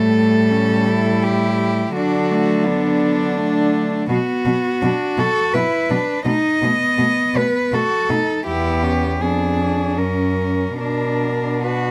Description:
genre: classical, lyrical piece for cello ensemble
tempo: 82 BPM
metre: 3/4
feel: rubato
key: D major, B minor from 4.1 s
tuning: A4 = 440 Hz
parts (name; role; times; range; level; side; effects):
- warm cello; melody; 0.0-11.9 s; D4 to D#5; -23 LUFS; equal; none
- warm cello; second line; 0.0-11.9 s; A3 to F#4; -25 LUFS; equal; none
- warm cello; accompaniment; 0.0-11.9 s; F#3 to F#4; -26 LUFS; equal; none
- clear cello; bass; 0.0-11.9 s; E2 to D3; -23 LUFS; equal; none
room: light reverb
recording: close, detailed microphones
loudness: -18 LUFS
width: mono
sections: 0.0-11.9 A section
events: none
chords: 0.0 A5; 1.9 D; 4.1 B5; 6.3 B7; 8.5 Em; 9.2 Fdim7; 10.0 F#; 10.8 Bm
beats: 0.49 1.21 | 1.93 2.65 3.36 | 4.09 4.81 5.53 | 6.25 6.99 7.72 | 8.46 9.21 9.98 | 10.79 11.62

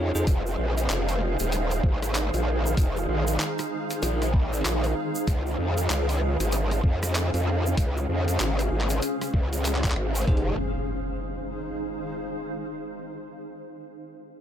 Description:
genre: glitch hop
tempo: 96 BPM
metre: 4/4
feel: swing 61% on 16ths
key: F minor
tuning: A4 = 439 Hz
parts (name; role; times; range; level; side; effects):
- bell-like tine electric piano; stabs; 0.0-0.3, 10.3-10.5 s; Eb4 to Db5; -34 LUFS; equal; sidechain pumping, dub echo
- growl bass; bass; 0.0-10.6 s; Eb1 to F2; -25 LUFS; equal; chorus
- granular cloud pad; texture; 0.0-12.7 s; Db4 to F5; -30 LUFS; equal; built-in reverb, sidechain pumping
- egg shaker; percussion; 0.2-10.3 s; none; -38 LUFS; right 4 dB; none
- boom bap sampler-style drum kit; drums; 0.3-10.5 s; handclaps, hi-hat, rim click; -32 LUFS; equal; small room ambience
- electronic kick drum; drums; 0.3-10.4 s; none; -22 LUFS; equal; small room ambience
- impact; sound effects; 10.3-12.8 s; none; -33 LUFS; equal; none
room: light reverb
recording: echo-heavy mix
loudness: -24 LUFS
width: side -10 dB against mid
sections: 0.0-10.3 A section; 10.3-12.8 B section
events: none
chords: 0.3 Fm7; 5.3 Dbmaj7; 10.3 Fm7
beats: | 0.27 0.90 1.52 2.15 | 2.77 3.40 4.02 4.65 | 5.27 5.90 6.52 7.15 | 7.77 8.40 9.02 9.65 | 10.27 10.90 11.52 12.15

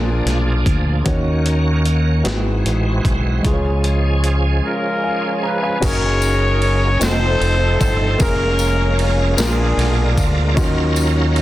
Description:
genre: slow gospel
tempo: 50 BPM (dotted quarters)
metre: 6/8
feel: straight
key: F# major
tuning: A4 = 440 Hz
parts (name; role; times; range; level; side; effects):
- warm concert grand piano; accompaniment; 0.0-11.4 s; G#2 to A#5; -23 LUFS; left 1 dB; none
- bright tonewheel organ; sustained chords; 0.0-11.4 s; D#3 to E#5; -24 LUFS; right 3 dB; slow rotary speaker, chorus vibrato
- fingered electric bass with an envelope filter; bass; 0.0-11.4 s; F1 to D#2; -18 LUFS; equal; none
- breakbeat sampler-style drum kit; drums; 0.3-11.4 s; crash cymbal, hi-hat, kick drum, ride cymbal, snare drum; -22 LUFS; equal; overdrive
- warm horn section; melody; 4.7-10.5 s; C#4 to C#5; -20 LUFS; left 1 dB; none
- tambourine; percussion; 5.8-11.3 s; none; -29 LUFS; left 6 dB; none
room: little or no reverb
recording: dense, heavily limited modern master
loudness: -15 LUFS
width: side -15 dB against mid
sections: 0.0-5.8 A section; 5.8-11.4 B section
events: break 4.6-5.8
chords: 0.0 A#7; 1.1 D#m7; 2.3 G#7alt; 3.4 C#; 5.8 F#69; 7.0 F7; 8.2 A#m7/E#; 9.4 A#7; 10.6 D#m9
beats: | 1.06 2.25 | 3.44 4.64 | 5.83 7.01 | 8.20 9.38 | 10.57

